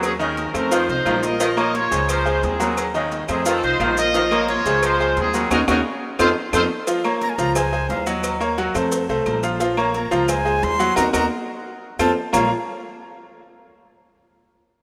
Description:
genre	latin, salsa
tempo	176 BPM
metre	4/4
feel	straight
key	Bb minor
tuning	A4 = 440 Hz
part	bright saxophone section	second line	0.0-6.7 s	Db3 to F3	-31 LUFS	equal	none
part	bright upright piano	accompaniment	0.0-12.5 s	Eb3 to Bb5	-24 LUFS	equal	none
part	upright bass	bass	0.0-12.5 s	Bb1 to F2	-31 LUFS	equal	none
part	agogo bells and timbales	percussion	0.0-12.4 s	none	-33 LUFS	equal	none
part	claves	percussion	0.0-12.4 s	none	-37 LUFS	equal	none
part	congas	percussion	0.0-12.4 s	none	-36 LUFS	equal	none
part	cowbell and bongos	percussion	0.0-12.4 s	none	-35 LUFS	equal	none
part	maracas	percussion	0.0-12.4 s	none	-36 LUFS	equal	none
part	clear horn section	melody	0.1-6.6 s	C4 to Eb5	-24 LUFS	equal	none
part	breathy bright jazz flute	melody	7.2-12.5 s	Eb5 to C6	-28 LUFS	equal	none
room	wet lush hall reverb, RT60 2.9 s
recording	rough home demo mix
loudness	-20 LUFS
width	mono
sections	0.0-6.9 A section; 6.9-12.3 B section; 12.3-13.7 C section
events	drum fill 0.9-1.4, 5.5-6.9, 11.3-12.3; band accent 5.5-6.9, 11.0-12.3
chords	0.0 Ebm7; 0.7 F5; 1.4 Bbm; 2.1 Dbmaj7; 2.8 Ebm7; 3.5 F5; 4.1 Bbm; 4.8 Dbmaj7; 5.5 Ebm7; 6.2 F7; 6.9 Bbm; 7.6 Db5; 8.2 Ebm7; 8.9 F; 9.6 Bbm; 10.3 Db5; 11.0 Ebm; 11.7 F; 12.3 Bb5

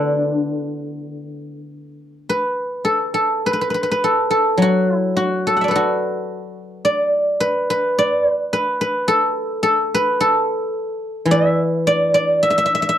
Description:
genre	chinese traditional, Chinese solo plucked strings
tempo	53 BPM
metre	4/4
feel	rubato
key	D gong mode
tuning	A4 = 440 Hz
part	guzheng	solo	0.0-13.0 s	D3 to F#5	-16 LUFS	equal	none
room	light reverb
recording	dry, close 1970s-style studio recording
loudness	-16 LUFS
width	side -10 dB against mid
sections	0.0-2.3 A section; 2.3-13.0 B section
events	none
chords	none

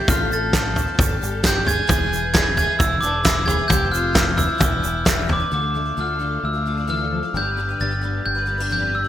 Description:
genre	indie folk with a building arrangement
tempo	132 BPM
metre	4/4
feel	straight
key	unclear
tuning	A4 = 440 Hz
part	glockenspiel with soft plastic mallets	melody	0.0-9.1 s	D6 to A6	-22 LUFS	equal	none
part	dark fiddle	second line	0.0-5.2 s	D4 to A4	-28 LUFS	right 3 dB	digital delay
part	picked twelve-string acoustic guitar	accompaniment	0.0-9.1 s	A2 to C5	-30 LUFS	left 6 dB	ensemble chorus
part	fingered electric bass	bass	0.1-9.0 s	E1 to D2	-26 LUFS	equal	none
part	loose indie drum kit	drums	0.1-5.4 s	kick drum, snare drum, toms	-20 LUFS	equal	gated reverb
part	egg shaker	percussion	0.1-5.2 s	none	-32 LUFS	right 11 dB	none
part	group handclap	percussion	0.5-5.2 s	none	-29 LUFS	right 6 dB	none
part	fingerpicked steel-string acoustic guitar	accompaniment	5.5-9.1 s	F2 to F4	-30 LUFS	left 3 dB	ensemble chorus
room	moderate plate reverb, RT60 1.3 s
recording	bright 1980s-style digital production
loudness	-18 LUFS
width	side -12 dB against mid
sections	0.0-5.5 A section; 5.5-9.1 B section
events	none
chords	0.1 Dm7/A; 1.0 Gsus2; 1.9 E; 3.7 F; 4.6 Em7; 5.5 Dm; 7.3 G

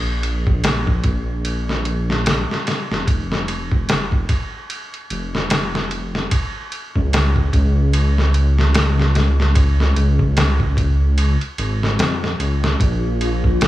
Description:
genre	trip hop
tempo	74 BPM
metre	4/4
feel	swing 58% on 16ths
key	Bb minor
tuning	A4 = 441 Hz
part	dark detuned saw bass	bass	0.0-13.7 s	F1 to F2	-18 LUFS	equal	none
part	trip hop sampler-style drum kit	drums	0.2-13.7 s	kick drum, ride cymbal, snare drum	-20 LUFS	equal	none
part	string machine, cellos	sustained chords	12.8-13.7 s	F4	-23 LUFS	left 1 dB	phaser, ensemble chorus
room	digital ambience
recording	small room ambience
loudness	-16 LUFS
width	side -15 dB against mid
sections	0.0-13.7 A section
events	none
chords	0.0 Bb5; 6.3 N.C.; 12.8 Bb5

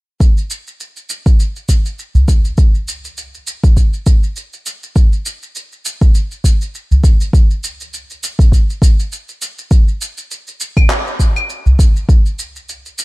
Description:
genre	downtempo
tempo	101 BPM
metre	4/4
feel	swing 56% on 16ths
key	none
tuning	none
part	electronic kick drum	drums	0.2-12.2 s	none	-10 LUFS	equal	none
part	electronic shaker, claves and handclaps	drums	0.2-13.0 s	none	-24 LUFS	right 1 dB	none
part	udu	percussion	2.1-2.3, 6.9-7.0, 11.7-11.8 s	none	-12 LUFS	equal	none
room	little or no reverb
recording	dark, warm production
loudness	-11 LUFS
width	side -22 dB against mid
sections	0.2-13.0 A section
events	none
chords	none

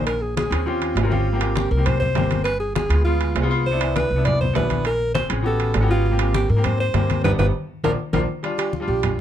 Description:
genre	Afro-Cuban jazz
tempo	201 BPM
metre	4/4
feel	straight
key	unclear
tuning	A4 = 439 Hz
part	mellow alto saxophone	melody	0.0-9.2 s	F4 to D5	-24 LUFS	right 1 dB	none
part	clear baby grand piano	accompaniment	0.0-9.2 s	G3 to Bb4	-26 LUFS	left 2 dB	none
part	upright bass	bass	0.0-9.2 s	G1 to Ab2	-22 LUFS	equal	none
part	congas	percussion	0.1-9.2 s	none	-27 LUFS	left 3 dB	none
part	timbales	percussion	0.1-9.2 s	none	-28 LUFS	right 8 dB	none
room	light reverb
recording	dark, warm production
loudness	-18 LUFS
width	side -10 dB against mid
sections	0.0-8.4 A section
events	band accent 7.2-8.4; drum fill 7.7-8.4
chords	0.1 Bbm9; 0.7 Eb13; 1.3 Abmaj9; 2.5 G7b9; 3.7 Cmaj9; 4.9 Bbm9; 5.4 A13; 6.0 Abmaj9; 7.2 G; 7.8 Bb; 8.4 Bb6

